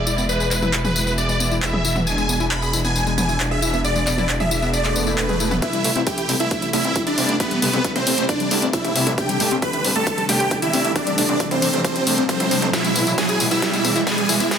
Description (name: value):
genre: uplifting trance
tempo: 135 BPM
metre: 4/4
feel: straight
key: A minor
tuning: A4 = 442 Hz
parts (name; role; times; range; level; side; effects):
- supersaw chords; melody; 0.0-14.6 s; B3 to B5; -22 LUFS; right 1 dB; phaser, sidechain pumping, low-pass filter, tape echo
- gritty driven synth bass; bass; 0.0-14.5 s; E1 to A2; -26 LUFS; equal; sidechain pumping, high-pass filter
- dark studio string section; sustained chords; 0.1-14.6 s; B2 to E4; -26 LUFS; equal; vintage 12-bit sampler grit, sidechain pumping
- analog pluck; arpeggios; 0.1-14.5 s; G3 to G#4; -27 LUFS; left 2 dB; chorus, sidechain pumping, tape echo
- big-room dance drum kit; drums; 0.1-14.6 s; handclaps, hi-hat, snare drum, tambourine, toms; -23 LUFS; left 1 dB; sidechain pumping on perc, high-pass filter on perc, sidechain pumping on toms, high-pass filter on toms, high-pass filter on snare, sidechain pumping on hats, high-pass filter on hats, high-pass filter on room
- swell and riser; sound effects; 4.8-14.6 s; none; -27 LUFS; right 2 dB; none
- electronic kick drum; drums; 5.6-14.6 s; none; -26 LUFS; equal; high-pass filter on kick, high-pass filter on room
room: light reverb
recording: dense, heavily limited modern master, high-pass filter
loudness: -17 LUFS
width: side -8 dB against mid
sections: 0.0-5.6 A section; 5.6-14.6 B section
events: filter sweep on synth pluck 0.0-5.6, 5.6-14.6; swell 4.8-5.6; build-up 5.6-14.6; riser 5.6-14.6; drum fill 12.7-14.6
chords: 0.0 E; 5.6 Am7; 12.7 E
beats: | 0.29 0.73 1.18 1.62 | 2.07 2.51 2.96 3.40 | 3.85 4.29 4.74 5.18 | 5.62 6.07 6.51 6.96 | 7.40 7.85 8.29 8.73 | 9.18 9.62 10.07 10.51 | 10.96 11.40 11.85 12.29 | 12.73 13.18 13.62 14.07 | 14.51